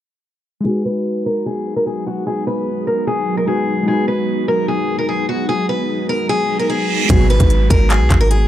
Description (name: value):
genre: hip hop, trap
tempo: 149 BPM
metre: 4/4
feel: half-time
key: G# minor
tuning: A4 = 439 Hz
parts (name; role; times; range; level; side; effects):
- muted felt-like synth keys; accompaniment; 0.6-8.5 s; G#3 to B4; -22 LUFS; left 1 dB; chorus, low-pass filter
- picked steel-string acoustic guitar; melody; 0.7-8.5 s; F#4 to B4; -20 LUFS; left 1 dB; low-pass filter
- ethereal airy pad; sustained chords; 1.6-8.5 s; D#3 to G#4; -23 LUFS; right 1 dB; ensemble chorus, built-in reverb, low-pass filter
- reverse cymbal and downlifter; sound effects; 6.6-8.5 s; none; -25 LUFS; right 5 dB; none
- mellow synth brass; stabs; 7.1-7.3 s; D#2 to F#3; -23 LUFS; equal; chorus, tape echo
- clean 808-style bass; bass; 7.1-8.5 s; G#1 to B1; -14 LUFS; equal; none
- trap drum kit; drums; 7.1-8.4 s; handclaps, hi-hat, kick drum; -14 LUFS; equal; none
room: little or no reverb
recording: dark, warm production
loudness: -15 LUFS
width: side -12 dB against mid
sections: 0.7-7.1 A section; 7.1-8.5 B section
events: filter sweep 0.7-7.1; reverse cymbal 6.6-7.1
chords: 0.7 G#m7